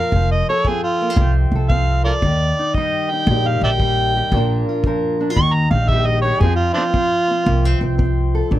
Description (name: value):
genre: acoustic country blues, solo or duo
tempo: 114 BPM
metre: 4/4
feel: swing 66% on 8ths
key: unclear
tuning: A4 = 436 Hz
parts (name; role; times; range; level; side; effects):
- overdriven harmonica; melody; 0.0-7.8 s; C4 to Db6; -19 LUFS; right 2 dB; none
- fingerpicked steel-string acoustic guitar; accompaniment; 0.0-8.6 s; Bb2 to Bb4; -22 LUFS; left 2 dB; none
- upright bass; bass; 0.1-8.6 s; F1 to F2; -17 LUFS; equal; none
- kick drum; drums; 0.1-8.6 s; none; -22 LUFS; equal; none
room: little or no reverb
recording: close, detailed microphones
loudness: -15 LUFS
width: side -14 dB against mid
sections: 0.0-8.5 A section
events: harmonica solo 0.0-8.5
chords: 0.1 F; 2.2 Eb; 4.3 Bb; 5.4 Eb; 6.4 F5